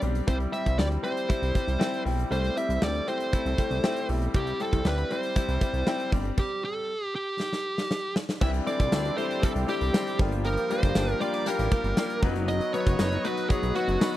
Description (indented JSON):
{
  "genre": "1980s-style pop",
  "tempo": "118 BPM",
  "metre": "4/4",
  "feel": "straight",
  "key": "C major",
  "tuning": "A4 = 439 Hz",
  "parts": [
    { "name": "clear concert grand piano", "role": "accompaniment", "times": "0.0-14.2 s", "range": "F#3 to Db5", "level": "-31 LUFS", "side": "left 6 dB", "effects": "none" },
    { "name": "direct-recorded clean electric guitar", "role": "riff", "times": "0.0-14.2 s", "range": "E3 to G4", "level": "-37 LUFS", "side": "right 7 dB", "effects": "wide subtle chorus" },
    { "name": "chorused synth bass", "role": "bass", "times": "0.0-14.0 s", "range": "F#1 to D2", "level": "-28 LUFS", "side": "equal", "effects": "none" },
    { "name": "big rock drum kit", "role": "drums", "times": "0.0-14.2 s", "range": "crash cymbal, hi-hat, kick drum, snare drum, tambourine", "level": "-28 LUFS", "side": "equal", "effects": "none" },
    { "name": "fuzz lead guitar", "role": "melody", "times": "0.3-14.2 s", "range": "F#4 to E5", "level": "-30 LUFS", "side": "right 1 dB", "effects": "distortion" },
    { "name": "lush unison pad", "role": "sustained chords", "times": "8.4-14.2 s", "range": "G4 to D#6", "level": "-38 LUFS", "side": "right 3 dB", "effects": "chorus" }
  ],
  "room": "little or no reverb",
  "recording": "dry, close 1970s-style studio recording",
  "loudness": "-24 LUFS",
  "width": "side -14 dB against mid",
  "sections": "0.0-8.4 A section; 8.4-14.2 B section",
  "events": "stop 6.4-8.4; drum fill 7.4-8.4",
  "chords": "0.3 C; 2.3 Am7/C; 4.3 C; 6.1 Gsus4; 8.4 Cadd9; 10.2 Gm7; 12.2 B/F#"
}